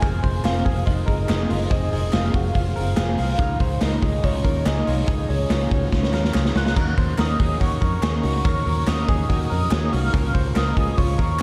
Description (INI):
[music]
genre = jangly indie pop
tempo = 142 BPM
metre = 4/4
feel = straight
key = Db major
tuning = A4 = 440 Hz
[part]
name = warm velvety synth lead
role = melody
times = 0.0-11.4 s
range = Db5 to Gb6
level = -31 LUFS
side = equal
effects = chorus
[part]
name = vibraphone with hard mallets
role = second line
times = 0.0-11.4 s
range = Db4 to Gb5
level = -39 LUFS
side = equal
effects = none
[part]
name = chorused retro synth keys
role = accompaniment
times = 0.0-11.4 s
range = Db4 to Eb5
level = -36 LUFS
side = equal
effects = none
[part]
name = picked steel-string acoustic guitar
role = accompaniment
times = 0.0-11.4 s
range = F2 to Bb4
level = -35 LUFS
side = equal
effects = none
[part]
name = direct-recorded clean electric guitar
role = arpeggios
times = 0.0-11.4 s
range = F4 to C5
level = -35 LUFS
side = equal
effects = subtle chorus
[part]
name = fretless electric bass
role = bass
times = 0.0-11.4 s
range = F1 to F2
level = -26 LUFS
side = equal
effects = none
[part]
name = raw garage drum kit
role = drums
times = 0.0-11.4 s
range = crash cymbal, hi-hat, kick drum, snare drum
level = -25 LUFS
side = equal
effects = none
[part]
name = group handclap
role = percussion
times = 0.4-11.4 s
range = none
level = -42 LUFS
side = equal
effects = none
[sound]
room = moderate lush hall reverb, RT60 1.9 s, small room ambience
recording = dreamy mix soaked in reverb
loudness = -21 LUFS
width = mono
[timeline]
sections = 0.0-6.8 A section; 6.8-11.4 A section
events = drum fill 5.9-6.8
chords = 0.0 Fm; 3.4 Dbadd9; 10.1 Bbm